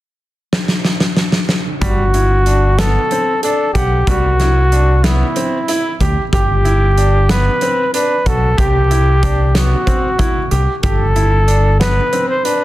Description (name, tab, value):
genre	progressive instrumental, band music in an uneven meter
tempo	186 BPM (eighths)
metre	7/8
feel	straight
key	G major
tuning	A4 = 440 Hz
part	big rock drum kit	drums	0.5-12.6 s	hi-hat, kick drum, snare drum	-18 LUFS	equal	none
part	warm trumpet	melody	1.8-12.6 s	E4 to C5	-17 LUFS	equal	plate reverb, tape echo
part	bright grand piano	arpeggios	1.8-12.6 s	G3 to F#5	-21 LUFS	equal	plate reverb, tape echo
part	fingered electric bass	bass	1.8-12.0 s	G1 to D2	-14 LUFS	equal	none
room	light reverb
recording	dense, heavily limited modern master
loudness	-12 LUFS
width	side -16 dB against mid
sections	0.0-1.8 A section; 1.8-12.6 B section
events	drum fill 0.5-1.8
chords	0.0 N.C.; 1.8 Gmaj9; 4.1 Cadd9; 6.3 G; 8.6 C; 10.8 Gadd9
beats	0.20 0.52 0.84 1.17 1.49 | 1.81 2.14 2.46 2.78 3.10 3.43 3.75 | 4.07 4.39 4.72 5.04 5.36 5.68 6.01 | 6.33 6.65 6.97 7.30 7.62 7.94 8.26 | 8.59 8.91 9.23 9.55 9.87 10.20 10.52 | 10.84 11.16 11.48 11.80 12.13 12.45